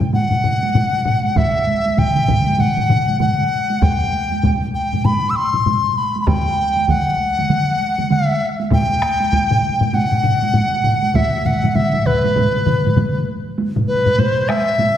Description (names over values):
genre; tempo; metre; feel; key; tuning
japanese traditional, taiko drum ensemble; 98 BPM; 4/4; swing 60% on 16ths; unclear; A4 = 445 Hz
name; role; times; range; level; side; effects
solo taiko drums; percussion; 0.0-15.0 s; none; -23 LUFS; right 3 dB; none
taiko ensemble; percussion; 0.0-15.0 s; none; -20 LUFS; left 1 dB; none
bright large dizi; melody; 0.1-15.0 s; B4 to E6; -18 LUFS; left 1 dB; none
taiko ensemble; percussion; 1.4-13.1 s; none; -22 LUFS; right 2 dB; none
taiko ensemble; percussion; 1.4-12.2 s; none; -22 LUFS; right 1 dB; none
room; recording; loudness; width
wet scoring stage reverb, RT60 1.6 s; heard from further back in the room; -15 LUFS; side -10 dB against mid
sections
0.0-13.6 A section; 13.6-15.0 B section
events
none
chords
none